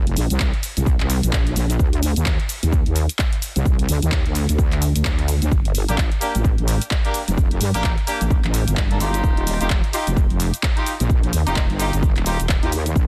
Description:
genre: bass house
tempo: 129 BPM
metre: 4/4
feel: swing 59% on 16ths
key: unclear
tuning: A4 = 440 Hz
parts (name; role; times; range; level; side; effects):
- wobble bass; bass; 0.0-13.1 s; Eb1 to G2; -22 LUFS; equal; chorus, overdrive, sidechain pumping
- house drum kit; drums; 0.1-13.1 s; handclaps, hi-hat, shaker; -29 LUFS; equal; none
- electronic kick drum; drums; 0.4-13.1 s; none; -22 LUFS; equal; none
- clear horn section; stabs; 5.9-12.7 s; Bb3 to A4; -28 LUFS; equal; vintage 12-bit sampler grit, sidechain pumping, tape echo
room: little or no reverb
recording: dense, heavily limited modern master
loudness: -20 LUFS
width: mono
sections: 0.0-13.1 A section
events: none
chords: 0.0 Bbsus2; 1.8 Cmadd9 (rootless); 5.5 Gm; 9.2 Ebadd9

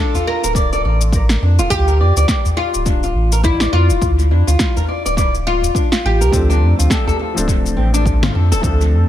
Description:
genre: organic downtempo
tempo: 104 BPM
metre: 4/4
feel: swing 59% on 16ths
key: unclear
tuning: A4 = 440 Hz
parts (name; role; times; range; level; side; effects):
- oud; melody; 0.0-6.3 s; E4 to Bb4; -21 LUFS; left 2 dB; dub echo
- flamenco guitar; arpeggios; 0.0-8.8 s; C4 to D5; -22 LUFS; equal; analog delay
- electronic shaker, snare drum and congas; drums; 0.1-8.9 s; none; -22 LUFS; left 1 dB; overdrive, dub echo
- udu; percussion; 0.1-8.2 s; none; -21 LUFS; equal; none
- warm sub bass; bass; 0.4-9.0 s; D1 to F2; -15 LUFS; equal; sidechain pumping
- electronic kick drum; drums; 0.5-8.8 s; none; -19 LUFS; equal; overdrive
- felt-muted upright piano; accompaniment; 6.3-9.1 s; F3 to A4; -23 LUFS; left 2 dB; sidechain pumping, dub echo
room: small room ambience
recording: echo-heavy mix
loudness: -13 LUFS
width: side -12 dB against mid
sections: 0.0-9.1 A section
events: none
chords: 0.0 Bb/D (rootless); 6.3 Dm7

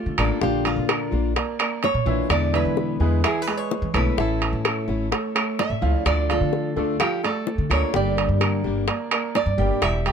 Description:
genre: latin, Cuban son and guajira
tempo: 128 BPM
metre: 4/4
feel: straight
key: unclear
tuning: A4 = 440 Hz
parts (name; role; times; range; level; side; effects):
- nylon-string guitar; melody; 0.0-10.1 s; F4 to E5; -27 LUFS; right 5 dB; none
- bright baby grand piano; arpeggios; 0.0-10.1 s; E3 to G5; -28 LUFS; right 4 dB; none
- upright bass; bass; 0.1-10.1 s; E1 to E3; -24 LUFS; equal; none
- fingerpicked plugged-in steel-string acoustic guitar; accompaniment; 0.2-10.1 s; B2 to G4; -27 LUFS; left 7 dB; none
- claves; percussion; 0.2-10.1 s; none; -33 LUFS; left 6 dB; none
- timbales; percussion; 0.2-10.1 s; none; -26 LUFS; right 6 dB; none
- bongos; percussion; 0.4-10.1 s; none; -27 LUFS; left 9 dB; none
room: little or no reverb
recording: close, detailed microphones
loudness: -20 LUFS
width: side -7 dB against mid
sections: 0.0-10.1 A section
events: none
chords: 0.4 Bb; 2.3 E7; 4.2 A; 6.1 Dm; 7.9 Gm

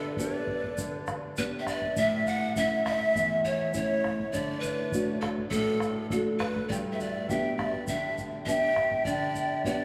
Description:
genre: andean folk, Andean ensemble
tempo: 101 BPM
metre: 4/4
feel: straight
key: unclear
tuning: A4 = 436 Hz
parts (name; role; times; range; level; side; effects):
- breathy pan flute; melody; 0.0-9.8 s; A4 to F#5; -32 LUFS; equal; none
- breathy large quena; second line; 0.0-9.8 s; A4 to A5; -37 LUFS; equal; none
- nylon-string guitar; accompaniment; 0.0-9.8 s; E2 to G4; -35 LUFS; equal; none
- bombo; percussion; 0.2-9.8 s; none; -40 LUFS; equal; none
- tube shaker; percussion; 0.2-9.8 s; none; -47 LUFS; equal; none
room: wet cathedral reverb, RT60 5.9 s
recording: in a vast, echoing space, studio reverb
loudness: -29 LUFS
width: mono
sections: 0.0-9.8 A section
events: none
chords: 0.0 G; 2.0 A; 4.3 D; 6.7 G

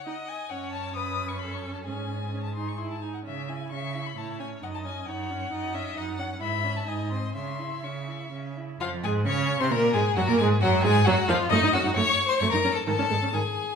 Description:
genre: quick classical-period movement for string quartet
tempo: 132 BPM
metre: 3/4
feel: rubato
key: C# minor, Db major from 8.8 s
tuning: A4 = 442 Hz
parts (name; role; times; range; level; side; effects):
- rich violin; melody; 0.0-13.8 s; D#5 to D#6; -30 LUFS; left 7 dB; none
- clear violin; second line; 0.0-13.8 s; Eb4 to F#5; -32 LUFS; left 2 dB; none
- rich viola; accompaniment; 0.1-13.4 s; Eb3 to E4; -29 LUFS; right 2 dB; none
- rich cello; bass; 0.5-13.4 s; F2 to Db3; -30 LUFS; right 2 dB; none
room: wet recital hall reverb, RT60 1.4 s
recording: recorded in a church or concert hall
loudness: -24 LUFS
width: side -6 dB against mid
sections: 0.0-8.8 A section; 8.8-13.8 A section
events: none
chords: 0.0 C#sus4 (rootless); 0.5 F#madd11; 1.9 G#sus4; 2.8 G#5; 3.3 C#m; 4.2 A; 4.6 D#m7/F#; 6.4 C#m/G#; 6.9 G#; 7.4 C#m; 8.8 Db/F; 9.7 Absus2; 10.2 Gbmaj7sus2; 11.5 Ebm7/Gb; 12.9 Absus4

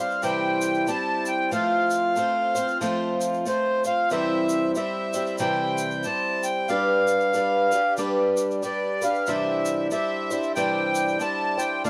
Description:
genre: acoustic folk duo or small band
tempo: 93 BPM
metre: 4/4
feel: swing 61% on 8ths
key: C major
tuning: A4 = 440 Hz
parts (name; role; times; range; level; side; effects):
- accordion; second line; 0.0-11.9 s; C5 to A5; -27 LUFS; equal; none
- picked twelve-string acoustic guitar; accompaniment; 0.0-11.9 s; C3 to C5; -27 LUFS; equal; none
- tube shaker; percussion; 0.1-11.9 s; none; -40 LUFS; equal; none
room: light reverb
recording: dry, close 1970s-style studio recording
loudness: -24 LUFS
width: mono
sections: 0.0-11.9 A section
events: accordion solo 0.0-11.9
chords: 0.0 C; 1.5 F; 4.1 C; 6.7 G; 9.3 Cadd9

